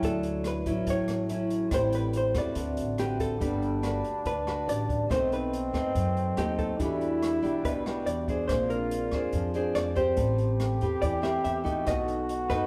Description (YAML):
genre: bossa nova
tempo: 142 BPM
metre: 4/4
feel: straight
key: D major, G major from 3.4 s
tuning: A4 = 439 Hz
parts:
  - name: vintage hollow-body jazz guitar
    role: melody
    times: 0.0-12.7 s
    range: G4 to E5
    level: -34 LUFS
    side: equal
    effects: none
  - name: nylon-string guitar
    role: accompaniment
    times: 0.0-12.7 s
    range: A2 to C5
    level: -33 LUFS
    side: equal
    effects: none
  - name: vibraphone with medium hard mallets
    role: accompaniment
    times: 0.0-12.7 s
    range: C4 to B5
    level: -41 LUFS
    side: equal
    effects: none
  - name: upright bass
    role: bass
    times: 0.0-12.7 s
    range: G1 to F#2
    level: -36 LUFS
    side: equal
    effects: none
  - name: open jazz drum kit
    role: drums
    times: 0.0-12.6 s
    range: hi-hat, kick drum, rim click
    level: -38 LUFS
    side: equal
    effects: none
  - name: clear trombone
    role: second line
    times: 3.4-12.7 s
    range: C4 to G4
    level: -36 LUFS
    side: equal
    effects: none
room: moderate large studio reverb, RT60 1.3 s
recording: band playing live in one room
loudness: -28 LUFS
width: mono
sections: 0.0-3.4 A section; 3.4-12.7 B section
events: none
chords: 0.0 Dmaj9; 1.7 Am7; 2.6 D13; 3.4 Gmaj7; 5.1 B7b9; 6.8 Em9; 8.5 Bb9; 10.2 Am9; 11.9 B7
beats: | 0.03 0.45 0.87 1.29 | 1.72 2.14 2.56 2.99 | 3.41 3.83 4.25 4.68 | 5.10 5.52 5.95 6.37 | 6.79 7.22 7.64 8.06 | 8.49 8.91 9.33 9.76 | 10.18 10.60 11.03 11.45 | 11.87 12.29